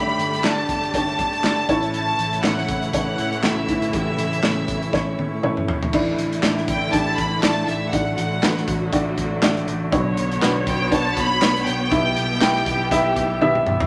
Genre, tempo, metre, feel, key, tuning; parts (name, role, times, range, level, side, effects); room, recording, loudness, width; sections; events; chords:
piano-driven pop; 120 BPM; 4/4; swing 56% on 16ths; A4 = 440 Hz
clear studio violin section; melody; 0.0-13.4 s; E5 to B5; -26 LUFS; equal
warm upright piano; accompaniment; 0.0-13.9 s; G2 to G5; -25 LUFS; equal
warm studio string section; sustained chords; 0.0-13.9 s; C#3 to C#5; -30 LUFS; equal
picked electric bass; bass; 0.0-13.9 s; G1 to A2; -31 LUFS; equal
modern studio drum kit; drums; 0.1-13.9 s; crash cymbal, handclaps, hi-hat, kick drum, snare drum, toms; -27 LUFS; equal
wet studio reverb, RT60 0.7 s; -21 LUFS; mono
0.0-5.9 A section; 5.9-13.9 B section
drum fill 4.9-5.9, 13.4-13.9
0.0 Gsus2; 1.7 A; 5.9 Asus4; 7.9 D/A; 9.9 Bmadd9; 11.9 Em/B